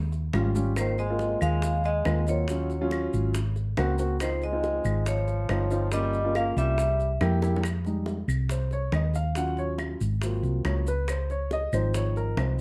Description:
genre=Afro-Cuban jazz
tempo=140 BPM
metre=4/4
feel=straight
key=F minor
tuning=A4 = 439 Hz
part: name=hollow-body short-scale fingered electric bass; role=bass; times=0.0-12.6 s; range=G1 to F2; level=-29 LUFS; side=equal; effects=none
part: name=bongos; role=percussion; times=0.1-12.6 s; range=none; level=-40 LUFS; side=equal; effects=none
part: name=maracas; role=percussion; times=0.1-12.6 s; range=none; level=-49 LUFS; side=equal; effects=none
part: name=dark baby grand piano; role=accompaniment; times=0.3-12.6 s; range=F3 to Gb5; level=-33 LUFS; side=equal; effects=none
part: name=claves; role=percussion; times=0.3-12.6 s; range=none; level=-42 LUFS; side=equal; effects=none
part: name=vibraphone with medium hard mallets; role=melody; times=0.8-7.2 s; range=C5 to F5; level=-32 LUFS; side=equal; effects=plate reverb
part: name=bright trombone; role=second line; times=0.8-7.2 s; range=Eb3 to Bb3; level=-37 LUFS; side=equal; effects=none
room=little or no reverb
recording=dark, warm production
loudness=-27 LUFS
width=mono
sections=0.0-7.6 A section; 7.6-12.6 B section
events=drum fill 7.4; grand piano solo 7.6-12.6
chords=0.0 Eb7; 0.8 Ab69; 2.5 Ebm7; 3.3 Ab9; 4.2 Dbmaj9; 5.9 Gm7b5; 6.8 C7; 7.6 Fm7; 9.4 Ebm7; 10.2 Ab13; 11.1 Dbmaj9

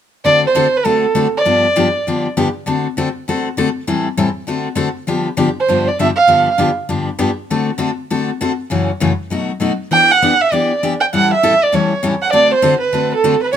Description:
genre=jazz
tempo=199 BPM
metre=4/4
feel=swing 60% on 8ths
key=D mixolydian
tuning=A4 = 442 Hz
part: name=picked steel-string acoustic guitar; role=accompaniment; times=0.2-13.6 s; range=F#2 to A4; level=-17 LUFS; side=left 3 dB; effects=none
part: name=dark violin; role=melody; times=0.3-2.2, 5.6-6.6, 9.9-13.6 s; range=A4 to G5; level=-12 LUFS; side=right 3 dB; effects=none
room=light reverb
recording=none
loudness=-13 LUFS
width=side -9 dB against mid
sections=0.2-13.6 A section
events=none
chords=0.2 D7; 1.5 G7; 2.7 D7; 3.9 Am7; 4.5 D7; 5.1 G7; 7.5 D7; 8.7 F#m7; 9.3 B7; 9.9 Em7; 11.1 A7; 12.3 D7

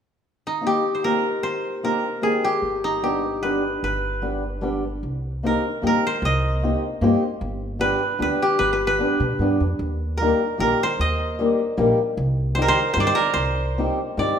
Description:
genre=musette waltz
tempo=151 BPM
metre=3/4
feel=rubato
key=C minor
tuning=A4 = 440 Hz
part: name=koto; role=melody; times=0.5-14.4 s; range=Eb4 to Eb5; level=-22 LUFS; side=right 1 dB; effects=none
part: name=fingerpicked old ladder-braced acoustic guitar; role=accompaniment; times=0.6-14.4 s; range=G3 to G4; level=-23 LUFS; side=left 2 dB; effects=none
part: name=upright bass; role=bass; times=2.6-14.3 s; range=G1 to B2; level=-26 LUFS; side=equal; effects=none
room=wet recital hall reverb, RT60 1.7 s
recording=minimal, uncompressed stereo recording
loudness=-20 LUFS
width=side -8 dB against mid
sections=0.2-5.0 A section; 5.0-14.4 B section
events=none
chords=0.2 Cm7; 2.6 G; 5.0 Cm7; 7.4 G; 9.8 Eb; 12.2 Cm

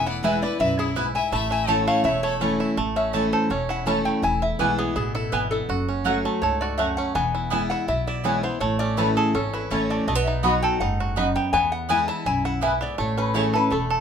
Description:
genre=bluegrass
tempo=165 BPM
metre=4/4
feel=straight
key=A major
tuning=A4 = 439 Hz
part: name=lap resonator guitar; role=melody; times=0.0-14.0 s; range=G#4 to A5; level=-26 LUFS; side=left 2 dB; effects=none
part: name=clear fiddle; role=second line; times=0.0-2.4 s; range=E4 to E5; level=-30 LUFS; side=left 4 dB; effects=none
part: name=picked steel-string acoustic guitar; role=accompaniment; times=0.0-14.0 s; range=E2 to F#4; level=-26 LUFS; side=left 1 dB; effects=none
part: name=bluegrass banjo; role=arpeggios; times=0.0-14.0 s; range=E3 to A4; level=-28 LUFS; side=right 4 dB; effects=none
part: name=upright bass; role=bass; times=0.0-14.0 s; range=E1 to E2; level=-30 LUFS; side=equal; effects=none
part: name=mandolin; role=stabs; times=0.2-13.4 s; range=A3 to B5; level=-25 LUFS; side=right 2 dB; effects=none
room=moderate small room ambience, RT60 0.5 s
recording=minimal, uncompressed stereo recording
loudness=-20 LUFS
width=side -7 dB against mid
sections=0.0-2.8 A section; 2.8-14.0 B section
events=resonator guitar played with a steel bar solo 2.8-14.0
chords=0.0 E; 1.3 A; 4.2 E; 5.7 F#m; 7.2 E; 8.6 A; 10.1 B; 11.5 E; 13.0 A

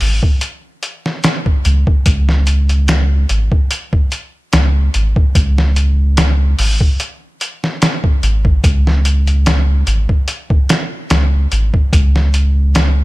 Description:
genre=trip hop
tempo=73 BPM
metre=4/4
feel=swing 54% on 16ths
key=unclear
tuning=A4 = 441 Hz
part: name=soft dub sub bass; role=bass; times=0.0-13.0 s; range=G#1 to C#2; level=-12 LUFS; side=equal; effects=none
part: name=trip hop sampler-style drum kit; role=drums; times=0.0-13.0 s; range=hi-hat, kick drum, snare drum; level=-14 LUFS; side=equal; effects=studio ambience
room=digital ambience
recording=lossy compression artefacts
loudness=-12 LUFS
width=side -20 dB against mid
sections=0.0-13.0 A section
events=none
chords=none

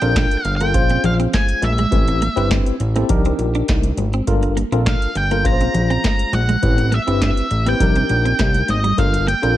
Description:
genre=early-eighties boogie funk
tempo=102 BPM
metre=4/4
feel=straight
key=G minor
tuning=A4 = 440 Hz
part: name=octave-fuzz lead guitar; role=melody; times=0.0-9.6 s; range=Eb5 to Bb5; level=-21 LUFS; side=equal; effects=distortion
part: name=tine electric piano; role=accompaniment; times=0.0-9.6 s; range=C4 to C5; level=-23 LUFS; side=left 2 dB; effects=overdrive, fast stereo tremolo
part: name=clean electric guitar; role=riff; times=0.0-9.5 s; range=G3 to Eb4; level=-27 LUFS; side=right 5 dB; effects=wide subtle chorus
part: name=fat analog bass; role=bass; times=0.0-9.6 s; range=G1 to C2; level=-19 LUFS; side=equal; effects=none
part: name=booming analog drum machine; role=drums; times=0.0-9.6 s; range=handclaps, hi-hat, kick drum, snare drum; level=-19 LUFS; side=equal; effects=none
part: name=congas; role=percussion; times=0.2-9.4 s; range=none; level=-26 LUFS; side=left 3 dB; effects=none
room=little or no reverb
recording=none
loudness=-15 LUFS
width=side -14 dB against mid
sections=0.0-9.6 A section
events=none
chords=0.0 Gm9; 0.7 Bbm9; 1.9 Am9; 3.1 Cm9; 4.3 Gm9; 5.5 Bbm9; 6.6 Am9; 7.8 Cm9; 9.0 Gm9

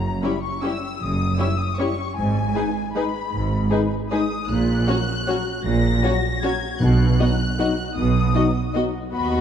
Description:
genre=classical, orchestral ballroom waltz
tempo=155 BPM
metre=3/4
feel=uneven beats, rubato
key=B major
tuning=A4 = 440 Hz
part: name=warm studio violin section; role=melody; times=0.0-9.4 s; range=G#5 to A#6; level=-28 LUFS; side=left 4 dB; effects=none
part: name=rich studio double bass section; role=bass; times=0.0-9.4 s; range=F#1 to D#2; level=-24 LUFS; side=right 2 dB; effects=none
part: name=warm studio cello section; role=bass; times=0.0-9.4 s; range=D#2 to B2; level=-25 LUFS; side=right 2 dB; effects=none
part: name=warm studio violin section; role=second line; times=0.2-9.4 s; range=F#4 to D#5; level=-30 LUFS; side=left 4 dB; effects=none
part: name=rich studio viola section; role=accompaniment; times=0.2-9.4 s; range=G#3 to F#4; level=-29 LUFS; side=equal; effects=none
part: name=mellow French horn section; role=sustained chords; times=0.2-8.9 s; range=F#3 to F#4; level=-28 LUFS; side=left 4 dB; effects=none
part: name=timpani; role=percussion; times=6.8-7.3 s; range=B2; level=-27 LUFS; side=left 2 dB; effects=none
room=moderate concert hall reverb, RT60 2.3 s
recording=dark, warm production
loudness=-19 LUFS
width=side -8 dB against mid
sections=0.0-9.4 A section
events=none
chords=0.0 F#7(no3); 2.2 G#m; 4.5 F#/A#; 6.8 B

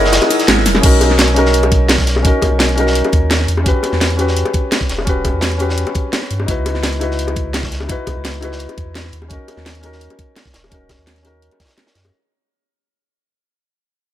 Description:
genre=liquid drum and bass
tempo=170 BPM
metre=4/4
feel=straight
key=B major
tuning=A4 = 444 Hz
part: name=felt-muted upright piano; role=accompaniment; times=0.0-12.2 s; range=C#4 to B4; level=-18 LUFS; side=left 1 dB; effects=digital delay
part: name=shimmering ambient pad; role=sustained chords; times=0.0-0.8 s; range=A#4 to E6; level=-24 LUFS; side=right 3 dB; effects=chorus, built-in reverb, sidechain pumping
part: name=thumb-piano-like synth pluck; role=arpeggios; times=0.0-0.6 s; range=G#3 to E4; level=-24 LUFS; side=equal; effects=none
part: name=warm sub bass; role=bass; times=0.0-12.1 s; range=D#1 to G2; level=-18 LUFS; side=equal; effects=tube saturation
part: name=crunchy breakbeat drum kit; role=drums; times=0.0-12.1 s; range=hi-hat, snare drum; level=-23 LUFS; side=equal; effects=high-pass filter on hats, high-pass filter on snare, high-pass filter on room
part: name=drum and bass drum kit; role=drums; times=0.1-12.0 s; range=cabasa, crash cymbal, hi-hat, ride cymbal, snare drum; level=-18 LUFS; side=equal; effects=none
part: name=bongos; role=percussion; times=0.2-12.1 s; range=none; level=-25 LUFS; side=left 3 dB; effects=none
part: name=electronic kick drum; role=drums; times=0.8-11.7 s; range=none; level=-17 LUFS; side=equal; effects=none
room=light reverb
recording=none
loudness=-13 LUFS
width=side -12 dB against mid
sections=0.8-12.1 A section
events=kick drops out 0.1-0.8; fade-out 0.8-12.1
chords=0.0 F#13; 0.8 Bmaj7; 3.5 Em6; 6.5 C#m11; 9.1 D#m7

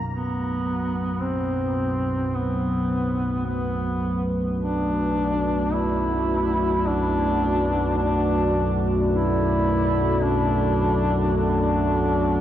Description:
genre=dark ambient drone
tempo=53 BPM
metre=4/4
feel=straight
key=B minor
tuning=A4 = 440 Hz
part: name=dark analog pad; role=sustained chords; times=0.0-12.4 s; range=A3 to F#5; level=-27 LUFS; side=equal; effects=chorus
part: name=analog drone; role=drone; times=0.0-12.4 s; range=B1 to F#2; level=-25 LUFS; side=equal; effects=chorus
part: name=warm duduk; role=melody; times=0.1-12.4 s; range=B3 to E4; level=-24 LUFS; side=equal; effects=ping-pong delay
room=wet huge ambient reverb, RT60 7.7 s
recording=worn, warbling old tape, cassette tape, warbly pitch drift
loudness=-20 LUFS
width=side -11 dB against mid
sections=0.1-12.4 A section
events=none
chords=0.1 Bm7

